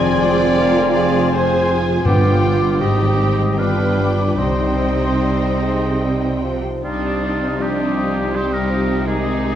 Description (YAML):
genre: classical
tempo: 72-84 BPM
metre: 3/4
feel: rubato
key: C minor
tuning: A4 = 440 Hz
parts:
  - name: warm studio violin section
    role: melody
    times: 0.0-9.6 s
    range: D4 to Ab5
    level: -29 LUFS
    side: left 2 dB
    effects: none
  - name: clear clarinet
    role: second line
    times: 0.0-9.6 s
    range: F4 to D5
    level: -24 LUFS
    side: equal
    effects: none
  - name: clear oboe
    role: second line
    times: 0.0-9.6 s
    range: F4 to Ab5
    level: -27 LUFS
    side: right 1 dB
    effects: none
  - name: clear studio violin section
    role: second line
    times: 0.0-9.6 s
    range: C4 to D5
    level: -29 LUFS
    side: left 3 dB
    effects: none
  - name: mellow hollow flute section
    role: second line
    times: 0.0-9.6 s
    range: C6 to Eb6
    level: -28 LUFS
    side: left 2 dB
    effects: none
  - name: mellow bassoon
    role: accompaniment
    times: 0.0-9.6 s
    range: Eb3 to C4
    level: -25 LUFS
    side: right 2 dB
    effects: none
  - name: rich studio viola section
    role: accompaniment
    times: 0.0-9.6 s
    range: F3 to Bb4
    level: -25 LUFS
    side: right 2 dB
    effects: none
  - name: mellow French horn section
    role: sustained chords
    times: 0.0-9.6 s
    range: G3 to Eb4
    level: -26 LUFS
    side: left 4 dB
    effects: none
  - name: concert harp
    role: arpeggios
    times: 0.0-9.6 s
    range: F2 to C6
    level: -25 LUFS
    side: left 6 dB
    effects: none
  - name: clear studio cello section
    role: bass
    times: 0.0-9.6 s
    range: F2 to C3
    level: -23 LUFS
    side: right 3 dB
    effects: none
  - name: clear studio double bass section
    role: bass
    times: 0.0-9.6 s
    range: F1 to C2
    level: -23 LUFS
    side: right 2 dB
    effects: none
  - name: timpani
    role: percussion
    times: 2.1-5.6 s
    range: G2 to C3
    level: -24 LUFS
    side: left 1 dB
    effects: none
room: moderate scoring stage reverb, RT60 1.8 s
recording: worn, warbling old tape, cassette tape, warbly pitch drift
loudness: -15 LUFS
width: side -10 dB against mid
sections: 0.0-6.9 A section; 6.9-9.6 A section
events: none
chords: 0.0 Fm; 2.1 G7; 2.8 Abmaj7; 3.6 G7; 4.4 Cm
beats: 0.60 1.33 | 2.06 2.82 3.59 | 4.39 5.22 6.05 | 6.85 7.61 8.35 | 9.06